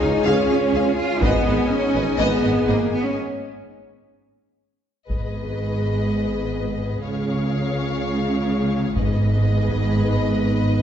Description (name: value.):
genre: cinematic, epic orchestral film score.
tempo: 124 BPM.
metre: 4/4.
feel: straight.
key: G# dorian.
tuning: A4 = 442 Hz.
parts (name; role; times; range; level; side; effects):
rich studio violin section; melody; 0.0-10.8 s; D#5 to G#5; -33 LUFS; left 5 dB; none.
rich studio violin section; second line; 0.0-10.8 s; B4 to E#5; -31 LUFS; left 3 dB; none.
warm symphonic viola section; accompaniment; 0.0-10.8 s; G#4 to B4; -31 LUFS; right 1 dB; none.
dark French horn section; sustained chords; 0.0-10.8 s; G#3 to D#5; -26 LUFS; left 3 dB; none.
warm symphonic string section; sustained chords; 0.0-3.2 s; G#3 to D#5; -29 LUFS; equal; none.
clear studio cello section; bass; 0.0-10.8 s; G#2 to E#4; -23 LUFS; right 2 dB; none.
rich symphonic double bass section; bass; 0.0-10.8 s; G#1 to C#2; -26 LUFS; right 1 dB; none.
warm tuba; bass; 0.0-2.8 s; G#1 to C#2; -28 LUFS; right 1 dB; none.
taiko ensemble; drums; 1.2-1.7, 5.1-6.0, 9.0-9.9 s; none; -27 LUFS; left 1 dB; none.
room: wet scoring stage reverb, RT60 1.6 s.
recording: heard from further back in the room, nothing above 7.9 kHz.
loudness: -19 LUFS.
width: side -9 dB against mid.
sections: 0.0-5.1 A section; 5.1-10.8 B section.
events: break 3.2-5.1; drum fill 4.4-5.1.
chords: 0.0 C#; 1.2 G#m; 3.2 N.C.; 5.1 G#m; 7.0 C#; 9.0 G#m.